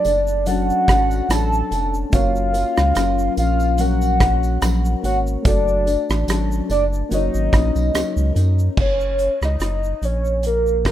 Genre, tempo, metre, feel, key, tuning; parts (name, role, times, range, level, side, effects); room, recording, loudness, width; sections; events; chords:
indie pop, bedroom pop; 72 BPM; 4/4; swing 55% on 16ths; A4 = 440 Hz
warbly nostalgic lead; melody; 0.0-10.9 s; A#4 to A5; -21 LUFS; right 1 dB; lush chorus
mellow electric guitar; accompaniment; 0.0-8.8 s; F#3 to A#4; -25 LUFS; left 7 dB; lush chorus, warbly pitch drift
reed electric piano; accompaniment; 0.0-8.8 s; A3 to C#5; -30 LUFS; right 3 dB; cassette tape
tambourine; percussion; 0.0-8.6 s; -40 LUFS; right 3 dB
round analog bass; bass; 0.1-10.9 s; E#1 to F#2; -20 LUFS; equal
loose indie drum kit; drums; 0.1-10.9 s; crash cymbal, hi-hat, kick drum, rim click, shaker; -22 LUFS; right 1 dB
studio reverb; rough home demo mix; -16 LUFS; side -12 dB against mid
0.0-8.8 A section; 8.8-10.9 B section
0.0 Dmaj7/F#; 2.1 F#maj7; 5.5 Dmaj7/F#; 7.1 F#6; 8.8 F#